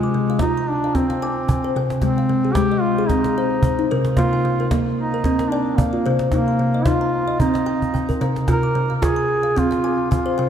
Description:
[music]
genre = world meditative, meditative tuned percussion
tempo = 111 BPM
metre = 4/4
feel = swing 55% on 16ths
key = unclear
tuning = A4 = 440 Hz
[part]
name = warm duduk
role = melody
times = 0.0-10.5 s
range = Ab3 to Bb4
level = -22 LUFS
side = right 1 dB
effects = diffuse ambient delay
[part]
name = kalimba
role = arpeggios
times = 0.0-10.5 s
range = C3 to D6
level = -20 LUFS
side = left 1 dB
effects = diffuse ambient delay
[part]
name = cajon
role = percussion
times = 0.0-10.3 s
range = none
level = -22 LUFS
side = right 1 dB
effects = none
[sound]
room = wet church reverb, RT60 2.7 s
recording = dark, warm production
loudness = -17 LUFS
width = side -8 dB against mid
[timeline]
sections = 0.0-10.5 A section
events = drum fill 7.8-8.5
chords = 0.0 Fm/C; 2.0 Ab/C; 4.2 Bb/C; 6.3 Eb/C; 8.5 Fm/C

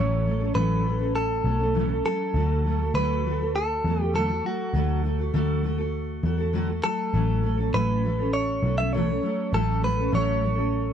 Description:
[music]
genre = acoustic pop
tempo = 100 BPM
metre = 4/4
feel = straight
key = D major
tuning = A4 = 445 Hz
[part]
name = direct-recorded clean electric guitar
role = melody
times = 0.0-10.9 s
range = F#4 to E5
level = -28 LUFS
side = equal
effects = lush chorus
[part]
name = fingerpicked steel-string acoustic guitar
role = accompaniment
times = 0.0-10.9 s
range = A2 to A4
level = -27 LUFS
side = equal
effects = double-tracked left and right
[part]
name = vintage muted picked electric bass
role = bass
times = 0.0-10.9 s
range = A1 to E2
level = -26 LUFS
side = equal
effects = none
[sound]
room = light reverb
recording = dry, close 1970s-style studio recording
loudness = -22 LUFS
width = side -8 dB against mid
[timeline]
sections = 0.0-10.9 A section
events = none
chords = 0.0 A6; 2.3 D; 7.1 A6

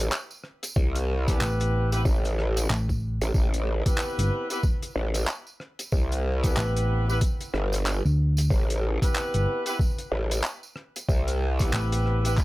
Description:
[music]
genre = glitch hop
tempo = 93 BPM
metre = 4/4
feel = swing 60% on 16ths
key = A minor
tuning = A4 = 440 Hz
[part]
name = growl bass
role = bass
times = 0.0-11.7 s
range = G1 to C2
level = -25 LUFS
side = equal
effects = chorus
[part]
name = cloth-damped thuddy drum kit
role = drums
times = 0.1-12.4 s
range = handclaps, hi-hat, rim click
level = -31 LUFS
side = equal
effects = none
[part]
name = tambourine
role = percussion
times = 0.1-12.4 s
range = none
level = -40 LUFS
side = right 3 dB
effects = none
[part]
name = electronic kick drum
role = drums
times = 0.8-12.4 s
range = none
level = -24 LUFS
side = equal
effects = overdrive
[part]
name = mellow horn section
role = stabs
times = 1.3-12.3 s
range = B3 to B4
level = -31 LUFS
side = equal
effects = sidechain pumping, digital delay
[part]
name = hollow-body short-scale fingered electric bass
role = bass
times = 1.4-12.4 s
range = G1 to D2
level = -24 LUFS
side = equal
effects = none
[sound]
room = little or no reverb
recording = none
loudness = -23 LUFS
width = side -18 dB against mid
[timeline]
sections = 0.0-12.4 A section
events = none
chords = 0.0 Am7

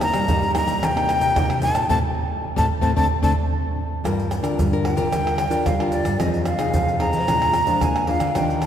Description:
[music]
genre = samba and choro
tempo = 112 BPM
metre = 4/4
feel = straight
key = G minor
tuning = A4 = 440 Hz
[part]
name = breathy jazz flute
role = melody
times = 0.0-8.7 s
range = D5 to Bb5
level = -23 LUFS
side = equal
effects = none
[part]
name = nylon-string guitar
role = accompaniment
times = 0.0-8.7 s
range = G2 to Bb4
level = -26 LUFS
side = left 3 dB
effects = none
[part]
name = tube shaker, pandeiro, tamborim and surdo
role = percussion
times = 0.0-8.7 s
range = none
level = -23 LUFS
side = right 1 dB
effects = none
[part]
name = nylon-string guitar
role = bass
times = 0.1-8.7 s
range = F2 to Bb3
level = -26 LUFS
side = right 1 dB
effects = none
[sound]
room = wet cathedral reverb, RT60 4.6 s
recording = recorded in a church or concert hall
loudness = -18 LUFS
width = side -9 dB against mid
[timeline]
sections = 0.0-4.0 A section; 4.0-8.7 B section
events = band accent 1.9-4.0; flute solo 4.0-8.7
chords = 0.0 Cm7; 1.9 Am7; 3.0 D5; 4.0 Gm7; 6.2 Fm7; 7.3 Bb7

